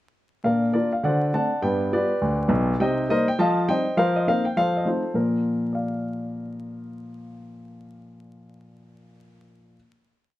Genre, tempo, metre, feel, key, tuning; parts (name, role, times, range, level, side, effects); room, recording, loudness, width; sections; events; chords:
jazz, stride piano; 203 BPM; 4/4; swing 61% on 8ths; Bb major; A4 = 440 Hz
warm baby grand piano; solo; 0.4-9.8 s; B1 to A5; -21 LUFS; equal
wet club reverb, RT60 0.6 s; vinyl crackle; -21 LUFS; side -15 dB against mid
0.4-5.2 A section; 5.2-7.5 final chord
0.4 Bb; 1.0 D7; 1.6 G7; 2.8 Cm7; 3.4 F9; 4.0 F7sus4; 4.6 F7; 5.2 Bb